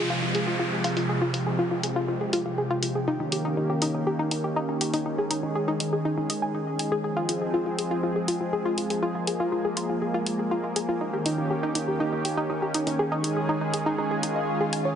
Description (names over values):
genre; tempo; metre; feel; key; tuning
melodic techno; 121 BPM; 4/4; straight; F minor; A4 = 440 Hz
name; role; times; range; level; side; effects
lush unison pad; sustained chords; 0.0-15.0 s; C3 to Ab4; -27 LUFS; equal; chorus
analog pluck; arpeggios; 0.0-14.9 s; Eb4 to Ab5; -28 LUFS; left 1 dB; chorus, tape echo
downlifter and swell; sound effects; 0.0-3.1, 14.2-15.0 s; none; -33 LUFS; left 1 dB; none
electronic hi-hat; drums; 0.3-14.8 s; none; -30 LUFS; left 1 dB; low-pass filter on hats, low-pass filter on perc, low-pass filter on snare, low-pass filter on toms
room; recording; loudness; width
moderate huge ambient reverb, RT60 7.8 s; heavily compressed radio sound, nothing above 10.5 kHz; -24 LUFS; side -8 dB against mid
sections
0.0-15.0 A section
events
filter sweep on analog synth pad 0.0-15.0; swell 14.2-15.0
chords
0.0 Fm; 3.1 Eb7; 5.1 Dbsus2; 7.0 Fm; 11.0 Eb7; 13.0 Dbsus2